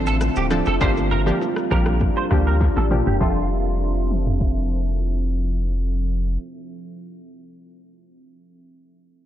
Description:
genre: afrobeats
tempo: 100 BPM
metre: 4/4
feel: straight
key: F major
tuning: A4 = 440 Hz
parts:
  - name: analog pluck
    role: accompaniment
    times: 0.0-7.1 s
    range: F3 to E5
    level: -25 LUFS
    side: equal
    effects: chorus
  - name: deep dark ambient pad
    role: sustained chords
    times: 0.0-6.4 s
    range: D3 to E5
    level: -27 LUFS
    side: equal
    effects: chorus, built-in reverb, sidechain pumping
  - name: punchy sub bass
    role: bass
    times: 0.0-6.4 s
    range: D1 to D2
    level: -22 LUFS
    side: equal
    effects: none
  - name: direct-recorded clean electric guitar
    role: riff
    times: 0.1-5.0 s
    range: F4 to C5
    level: -28 LUFS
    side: right 4 dB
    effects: ensemble chorus, tape echo
  - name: deep house drum kit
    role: drums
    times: 0.1-4.6 s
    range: crash cymbal, kick drum, rim click, shaker, snare drum, toms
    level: -24 LUFS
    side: equal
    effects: overdrive
  - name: bongos and congas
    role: percussion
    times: 0.2-3.5 s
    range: none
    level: -34 LUFS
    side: left 1 dB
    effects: none
room: moderate lush hall reverb, RT60 2.1 s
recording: dreamy mix soaked in reverb, low-pass filter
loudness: -18 LUFS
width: side -11 dB against mid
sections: 0.0-3.2 A section; 3.2-5.6 B section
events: filter sweep 0.0-3.2; drum fill 2.6-3.2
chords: 0.0 Dm7; 0.8 Gm7; 3.2 Fmaj7

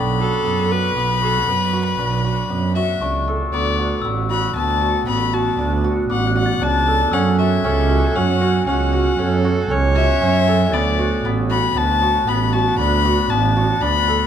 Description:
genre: contemporary instrumental, chamber music in an uneven meter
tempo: 117 BPM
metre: 7/4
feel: straight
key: unclear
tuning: A4 = 436 Hz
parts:
  - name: dark violin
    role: melody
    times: 0.0-14.3 s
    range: D5 to B5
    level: -21 LUFS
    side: left 6 dB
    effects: none
  - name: hammered dulcimer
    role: arpeggios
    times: 0.0-14.3 s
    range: B3 to A4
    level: -22 LUFS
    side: equal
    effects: none
  - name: warm double bass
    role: bass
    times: 0.0-14.3 s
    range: A1 to F#2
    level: -20 LUFS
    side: right 3 dB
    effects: none
  - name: glockenspiel with soft plastic mallets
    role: texture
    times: 0.0-12.2 s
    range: G5 to A6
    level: -31 LUFS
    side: left 6 dB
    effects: none
  - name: rich viola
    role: second line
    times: 0.2-10.7 s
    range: F#4 to C#5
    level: -24 LUFS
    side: right 3 dB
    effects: none
room: moderate recital hall reverb, RT60 1.5 s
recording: none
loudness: -16 LUFS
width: side -9 dB against mid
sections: 0.0-3.5 A section; 3.5-14.3 B section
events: none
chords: 0.0 Bm; 3.5 D6; 7.1 F#m; 10.7 D6

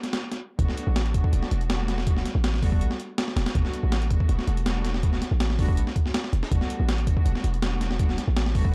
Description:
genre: drum and bass, jungle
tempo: 162 BPM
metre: 4/4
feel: straight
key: E minor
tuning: A4 = 440 Hz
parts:
  - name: breakbeat sampler-style drum kit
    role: drums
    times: 0.0-8.7 s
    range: hi-hat, kick drum, snare drum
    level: -28 LUFS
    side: equal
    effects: none
  - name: dark studio string section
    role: sustained chords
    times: 0.6-8.7 s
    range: G3 to F#4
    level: -37 LUFS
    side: equal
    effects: none
  - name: warm 808-style bass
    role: bass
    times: 0.6-8.7 s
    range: E1 to B1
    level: -28 LUFS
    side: equal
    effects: none
room: digital ambience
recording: dry, gritty hardware recording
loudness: -25 LUFS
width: mono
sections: 0.0-8.7 A section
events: break 0.0-0.6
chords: 0.0 Em11

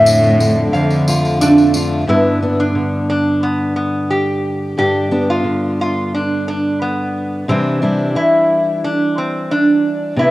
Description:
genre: acoustic folk duo or small band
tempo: 89 BPM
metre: 4/4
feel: straight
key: G mixolydian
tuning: A4 = 440 Hz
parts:
  - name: metal-body resonator slide guitar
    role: melody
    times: 0.0-10.3 s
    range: B3 to F5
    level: -15 LUFS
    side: right 1 dB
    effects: cassette tape
  - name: warm cello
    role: second line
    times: 0.0-1.4 s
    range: A2 to D3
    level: -16 LUFS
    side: equal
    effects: cassette tape
  - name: fingerpicked steel-string acoustic guitar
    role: accompaniment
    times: 0.0-10.3 s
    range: F2 to F4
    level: -18 LUFS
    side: left 1 dB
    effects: cassette tape
  - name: pedal harmonium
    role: sustained chords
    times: 0.0-2.0 s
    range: F2 to A3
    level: -22 LUFS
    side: left 1 dB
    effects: cassette tape
  - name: tambourine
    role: percussion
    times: 0.1-1.9 s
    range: none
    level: -26 LUFS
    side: left 2 dB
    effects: none
room: light reverb, studio reverb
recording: home recording on cassette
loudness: -13 LUFS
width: side -17 dB against mid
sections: 0.0-2.1 A section; 2.1-10.3 B section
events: none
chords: 0.0 Dm/F; 2.1 G; 7.5 Cadd9

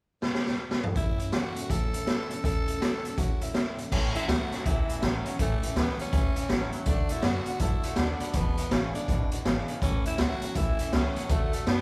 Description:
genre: rockabilly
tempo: 163 BPM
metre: 4/4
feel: swing 63% on 8ths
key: A major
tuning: A4 = 440 Hz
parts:
  - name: raw garage drum kit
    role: drums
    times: 0.2-11.8 s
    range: crash cymbal, hi-hat, kick drum, snare drum, toms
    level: -30 LUFS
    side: equal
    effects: none
  - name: growling tenor saxophone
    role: melody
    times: 1.0-11.8 s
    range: A3 to A4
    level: -37 LUFS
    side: equal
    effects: none
  - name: picked steel-string acoustic guitar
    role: accompaniment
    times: 1.0-11.8 s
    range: E2 to F#4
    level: -40 LUFS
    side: equal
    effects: none
  - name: twangy electric guitar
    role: riff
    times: 1.0-11.8 s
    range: E2 to B3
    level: -41 LUFS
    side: equal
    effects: spring reverb
  - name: upright bass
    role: bass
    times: 3.9-11.8 s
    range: E1 to F#2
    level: -35 LUFS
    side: equal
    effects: none
room: light reverb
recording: band playing live in one room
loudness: -28 LUFS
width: mono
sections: 1.0-3.9 A section; 3.9-11.8 B section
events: drum fill 0.2-1.0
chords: 0.0 N.C.; 1.0 A; 6.9 D; 8.3 E7; 9.8 A; 11.3 D

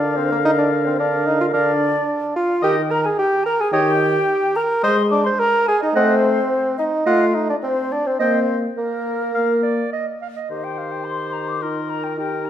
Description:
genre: quick classical-period movement for wind quintet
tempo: 108 BPM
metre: 4/4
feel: straight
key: Eb major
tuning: A4 = 440 Hz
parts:
  - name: hollow concert flute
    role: melody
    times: 0.0-12.5 s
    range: Bb4 to D6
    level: -25 LUFS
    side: left 8 dB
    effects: none
  - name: warm oboe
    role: second line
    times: 0.0-12.5 s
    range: Bb4 to G5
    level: -26 LUFS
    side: left 3 dB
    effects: none
  - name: dark French horn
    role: accompaniment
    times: 0.0-12.5 s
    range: D3 to G4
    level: -23 LUFS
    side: left 1 dB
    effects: none
  - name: warm clarinet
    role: accompaniment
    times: 0.0-12.5 s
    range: Eb4 to F5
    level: -25 LUFS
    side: right 7 dB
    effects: none
  - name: warm bassoon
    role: bass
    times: 0.0-12.5 s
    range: Eb3 to C5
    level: -20 LUFS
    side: right 2 dB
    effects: none
room: wet recital hall reverb, RT60 1.6 s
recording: none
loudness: -17 LUFS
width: side -10 dB against mid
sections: 0.0-10.5 A section; 10.5-12.5 B section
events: none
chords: 0.0 Bb/D; 2.6 Eb; 3.7 Eb7; 4.8 Ab; 5.9 Adim; 8.2 Eb5/Bb; 9.3 Bb; 10.5 Eb

